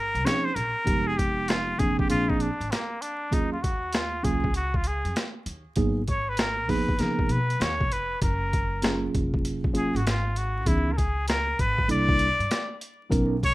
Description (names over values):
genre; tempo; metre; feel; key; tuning
hip hop, jazz-hop; 98 BPM; 4/4; swing 65% on 16ths; Bb minor; A4 = 440 Hz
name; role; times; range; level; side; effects
trumpet with straight mute; melody; 0.0-13.5 s; Bb3 to D5; -28 LUFS; equal; plate reverb
upright bass; bass; 0.0-13.5 s; F1 to Db3; -30 LUFS; equal; none
mellow tine electric piano; accompaniment; 0.2-13.4 s; Fb3 to A#4; -27 LUFS; right 1 dB; slow stereo tremolo, plate reverb
boom bap sampler-style drum kit; drums; 0.2-13.5 s; hi-hat, kick drum, snare drum; -27 LUFS; equal; none
room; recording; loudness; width
light reverb; rough home demo mix, vinyl crackle; -23 LUFS; side -18 dB against mid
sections
0.0-13.5 A section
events
muted trumpet solo 0.0-13.5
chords
0.0 Bbm11; 0.9 Fm7b5; 2.1 Bb7; 3.3 Ebm11; 5.8 Abm9; 7.0 Db13; 8.2 Gbmaj9; 10.7 Dbm7; 11.9 C13